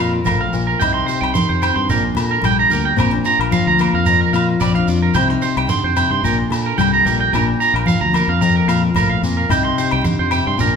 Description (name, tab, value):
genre	highlife guitar band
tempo	110 BPM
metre	4/4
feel	swing 53% on 16ths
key	Bb major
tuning	A4 = 440 Hz
part	nylon-string guitar	accompaniment	0.0-10.8 s	F2 to A4	-19 LUFS	left 5 dB	none
part	electric guitar at the edge of break-up	arpeggios	0.0-10.7 s	Bb4 to C6	-18 LUFS	right 5 dB	tape echo
part	fingered electric bass	bass	0.0-10.8 s	Bb1 to Bb2	-22 LUFS	equal	none
part	congas	percussion	0.2-10.7 s	none	-25 LUFS	right 1 dB	none
part	agogo bells	percussion	0.3-10.5 s	none	-26 LUFS	left 5 dB	none
part	shekere	percussion	0.3-10.7 s	none	-25 LUFS	right 4 dB	none
room	wet large studio reverb, RT60 1.1 s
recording	band playing live in one room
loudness	-14 LUFS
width	side -6 dB against mid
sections	0.0-10.8 A section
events	none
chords	0.0 Bb; 0.8 Cm; 1.9 Gm/Bb; 3.0 Bb; 5.2 Cm; 6.2 Gm/Bb; 7.3 Bb; 9.5 Cm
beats	0.26 | 0.80 1.35 1.89 2.44 | 2.98 3.52 4.07 4.61 | 5.15 5.70 6.24 6.78 | 7.33 7.87 8.41 8.96 | 9.50 10.04 10.59